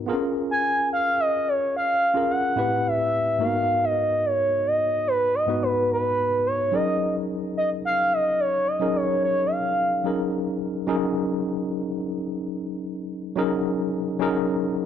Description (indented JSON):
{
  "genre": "soul",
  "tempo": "72 BPM",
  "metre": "4/4",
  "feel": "straight",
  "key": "unclear",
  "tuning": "A4 = 440 Hz",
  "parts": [
    { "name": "tine electric piano", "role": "accompaniment", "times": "0.0-14.9 s", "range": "G#2 to B4", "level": "-26 LUFS", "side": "left 1 dB", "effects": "overdrive, fast stereo tremolo" },
    { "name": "expressive synth lead", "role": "melody", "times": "0.5-10.1 s", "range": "B4 to G#5", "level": "-22 LUFS", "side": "equal", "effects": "chorus" }
  ],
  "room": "light reverb, digital ambience",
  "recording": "none",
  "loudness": "-21 LUFS",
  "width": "side -9 dB against mid",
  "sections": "0.0-10.1 A section; 10.1-14.9 B section",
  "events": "analog synth lead solo 0.0-10.1",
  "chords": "0.1 A#m7; 2.6 Am9; 3.4 G#m9; 6.7 F#6"
}